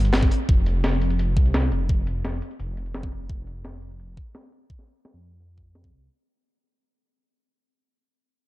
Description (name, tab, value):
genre	liquid drum and bass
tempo	171 BPM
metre	4/4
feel	straight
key	unclear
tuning	A4 = 440 Hz
part	dark detuned saw bass	bass	0.0-6.1 s	F1 to F2	-24 LUFS	equal	none
part	breakbeat sampler-style drum kit	drums	0.0-6.0 s	hi-hat, snare drum	-28 LUFS	left 1 dB	low-pass filter on hats, low-pass filter on snare, low-pass filter on room
part	electronic kick drum	drums	0.2-5.9 s	none	-21 LUFS	equal	none
room	little or no reverb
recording	dark, warm production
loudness	-21 LUFS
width	side -18 dB against mid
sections	0.0-6.1 A section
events	fade-out 0.0-6.1; filter sweep on drum 0.0-6.1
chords	none